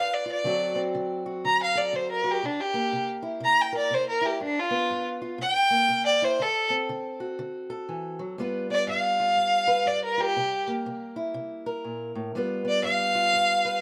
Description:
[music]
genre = acoustic country blues, solo or duo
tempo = 121 BPM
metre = 4/4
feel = swing 62% on 8ths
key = G mixolydian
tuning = A4 = 440 Hz
[part]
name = dark fiddle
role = melody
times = 0.0-13.8 s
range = D4 to Bb5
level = -26 LUFS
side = equal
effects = none
[part]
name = fingerpicked acoustic archtop guitar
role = accompaniment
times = 0.0-13.8 s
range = G2 to B4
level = -34 LUFS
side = equal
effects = none
[sound]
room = light reverb, small room ambience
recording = rough home demo mix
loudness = -26 LUFS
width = mono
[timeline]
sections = 0.0-8.4 A section; 8.4-13.8 A section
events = fiddle solo 0.0-13.8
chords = 0.4 D7; 2.4 C7; 4.4 G7; 5.4 C7; 6.4 D7; 8.4 G7; 10.4 C7; 12.3 G7

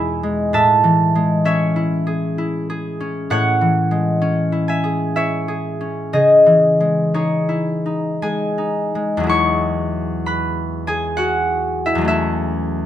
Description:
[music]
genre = classical, solo harp piece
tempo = 53-67 BPM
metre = 3/4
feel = rubato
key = C# minor, E major from 9.3 s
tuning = A4 = 441 Hz
[part]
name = concert harp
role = solo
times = 0.0-12.9 s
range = E2 to C#6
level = -16 LUFS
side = equal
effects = none
[sound]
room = moderate large studio reverb, RT60 1.3 s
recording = close, detailed microphones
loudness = -16 LUFS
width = side -11 dB against mid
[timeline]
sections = 0.0-9.3 A section; 9.3-12.9 B section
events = none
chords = 0.0 Emaj7; 0.5 Amaj7; 6.2 C#madd9; 9.3 Eadd9; 12.1 A69/E

